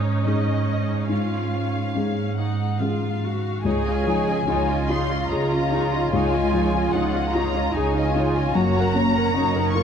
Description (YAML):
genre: cinematic, emotional film score for orchestra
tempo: 73 BPM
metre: 3/4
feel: rubato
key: unclear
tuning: A4 = 440 Hz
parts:
  - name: muted symphonic violin section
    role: melody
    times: 0.0-9.8 s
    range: Db5 to Db6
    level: -28 LUFS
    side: left 3 dB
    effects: none
  - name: felt-muted upright piano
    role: accompaniment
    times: 0.0-9.8 s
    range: Db2 to Bb4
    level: -25 LUFS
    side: left 3 dB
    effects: none
  - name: muted chamber viola section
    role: accompaniment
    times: 0.0-9.8 s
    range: Bb3 to Bb4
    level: -30 LUFS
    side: equal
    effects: none
  - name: muted symphonic cello section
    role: bass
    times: 0.0-9.8 s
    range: Ab2 to Ab4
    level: -26 LUFS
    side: right 3 dB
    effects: none
  - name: muted symphonic violin section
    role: second line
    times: 3.6-9.8 s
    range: F4 to Gb5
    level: -28 LUFS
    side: left 4 dB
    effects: none
  - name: muted symphonic double bass section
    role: bass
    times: 3.6-9.8 s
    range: Gb1 to Db2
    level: -26 LUFS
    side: right 4 dB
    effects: none
room: moderate scoring stage reverb, RT60 1.6 s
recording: dark, warm production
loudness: -20 LUFS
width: side -7 dB against mid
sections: 0.0-3.7 A section; 3.7-9.8 B section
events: none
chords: 0.0 Absus4; 1.1 Db/Ab; 3.7 Dbadd9; 8.6 Gb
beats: 0.26 | 1.10 1.95 2.80 | 3.65 4.48 5.30 | 6.12 6.94 7.75 | 8.55 9.36